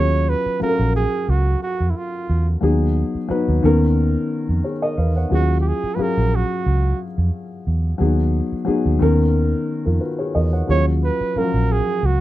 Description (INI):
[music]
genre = lush 1970s-style soul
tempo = 89 BPM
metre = 4/4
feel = swing 54% on 16ths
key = Eb minor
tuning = A4 = 435 Hz
[part]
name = warm flugelhorn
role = melody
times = 0.0-12.2 s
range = Fb4 to Db5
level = -23 LUFS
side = right 5 dB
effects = none
[part]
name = dark grand piano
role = accompaniment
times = 0.0-12.2 s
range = D#3 to F#5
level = -21 LUFS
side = left 3 dB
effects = none
[part]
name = vintage muted fingered electric bass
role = bass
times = 0.0-12.2 s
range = Bb1 to F2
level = -18 LUFS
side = right 1 dB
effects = none
[sound]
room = light reverb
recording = rough home demo mix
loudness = -17 LUFS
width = side -15 dB against mid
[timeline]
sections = 0.0-12.2 A section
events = none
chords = 0.0 Ebm11; 2.6 Abm7/Eb; 3.6 Bmaj9/D#; 5.3 Ebm11; 8.0 Abm7/Eb; 9.0 Bmaj9/D#; 10.7 Ebm11